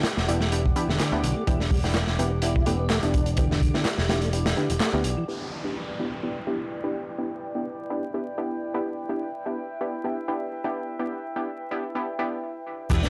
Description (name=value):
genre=breakbeat, breaks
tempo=126 BPM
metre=4/4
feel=swing 53% on 16ths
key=E minor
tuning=A4 = 443 Hz
part: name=warbly tape-like pad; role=sustained chords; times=0.0-13.1 s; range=E4 to D6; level=-37 LUFS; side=equal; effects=chorus, built-in reverb, sidechain pumping
part: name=mellow tonewheel organ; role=riff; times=0.0-5.2, 12.9-13.1 s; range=D3 to E4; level=-33 LUFS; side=equal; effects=overdrive, chorus vibrato, slow rotary speaker, analog delay
part: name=filtered dub chord stab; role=stabs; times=0.0-13.1 s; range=B3 to G4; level=-33 LUFS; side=equal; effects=chorus, analog delay
part: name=crunchy breakbeat drum kit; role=drums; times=0.0-5.2, 12.9-13.1 s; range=crash cymbal, hi-hat, kick drum, snare drum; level=-28 LUFS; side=equal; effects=none
part: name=electronic handclaps and shaker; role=drums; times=0.0-4.9, 12.9-13.1 s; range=none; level=-36 LUFS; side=equal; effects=none
part: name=picked electric bass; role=bass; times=0.2-5.1, 12.9-13.1 s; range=E1 to D2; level=-29 LUFS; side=equal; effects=tube saturation
part: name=downlifter and sub drop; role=sound effects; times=5.3-9.1, 12.9-13.1 s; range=none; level=-38 LUFS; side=equal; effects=none
room=light reverb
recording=dry, gritty hardware recording, vinyl crackle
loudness=-27 LUFS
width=mono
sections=0.0-5.3 A section; 5.3-12.9 B section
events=kick drops out 4.3-5.3; band accent 4.8; break 12.4-12.9; impact 12.9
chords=0.0 Em7